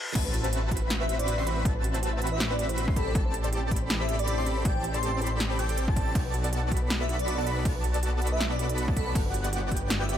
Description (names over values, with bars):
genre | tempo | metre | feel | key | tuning
future bass | 160 BPM | 4/4 | swing 55% on 16ths, half-time | A dorian | A4 = 442 Hz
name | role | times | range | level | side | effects
reverse cymbal and sub drop | sound effects | 0.0-1.7 s | none | -38 LUFS | left 1 dB | none
airy dreamy lead | arpeggios | 0.2-10.2 s | F#5 to C6 | -38 LUFS | equal | chorus, sidechain pumping, digital delay
soft round pluck | arpeggios | 0.2-10.1 s | F#4 to A5 | -39 LUFS | right 1 dB | chorus, sidechain pumping, digital delay
dense compressed supersaw | riff | 0.2-10.2 s | B3 to C6 | -34 LUFS | equal | sidechain pumping
wide detuned saw bass | bass | 0.2-10.2 s | G1 to B1 | -29 LUFS | equal | chorus, tube saturation, sidechain pumping
big-room dance drum kit | drums | 0.2-10.2 s | crash cymbal, hi-hat, snare drum | -33 LUFS | equal | overdrive
electronic kick drum | drums | 0.2-9.8 s | none | -28 LUFS | equal | overdrive
airy dreamy lead | melody | 1.0-10.2 s | A4 to C6 | -35 LUFS | equal | chorus, sidechain pumping, digital delay
room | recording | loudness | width
digital ambience | high-pass filter | -25 LUFS | side -10 dB against mid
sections
0.2-10.2 A section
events
break 0.0; reverse cymbal 0.0; drop 0.2-10.2; impact 0.2-1.7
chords
0.2 Am69; 3.0 D7sus4/A; 6.2 Bm7; 9.2 Gmaj7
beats
| 0.15 0.53 0.90 1.28 | 1.65 2.03 2.40 2.78 | 3.15 3.53 3.90 4.28 | 4.65 5.03 5.40 5.78 | 6.15 6.53 6.90 7.28 | 7.65 8.03 8.40 8.78 | 9.15 9.53 9.90